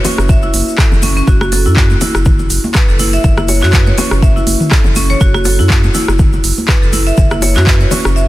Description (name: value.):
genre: afro house.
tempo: 122 BPM.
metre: 4/4.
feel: swing 56% on 16ths.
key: F# minor.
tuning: A4 = 440 Hz.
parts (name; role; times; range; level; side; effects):
marimba with hard mallets; arpeggios; 0.0-8.3 s; C#4 to E5; -17 LUFS; right 1 dB; sidechain pumping, dub echo.
afro-pop drum kit; drums; 0.0-8.1 s; handclaps, hi-hat, rim click, toms; -17 LUFS; right 1 dB; none.
bongos; percussion; 0.0-8.0 s; none; -23 LUFS; left 6 dB; none.
congas; percussion; 0.0-8.1 s; none; -23 LUFS; right 1 dB; none.
tube shaker; percussion; 0.0-8.3 s; none; -26 LUFS; left 5 dB; none.
round analog bass; bass; 0.2-8.3 s; F#1 to F#2; -14 LUFS; equal; sidechain pumping.
electronic kick drum; drums; 0.3-7.8 s; none; -12 LUFS; equal; none.
room: little or no reverb.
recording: dense, heavily limited modern master.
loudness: -9 LUFS.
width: side -16 dB against mid.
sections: 0.0-8.3 A section.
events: none.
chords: 0.0 F#7(no3).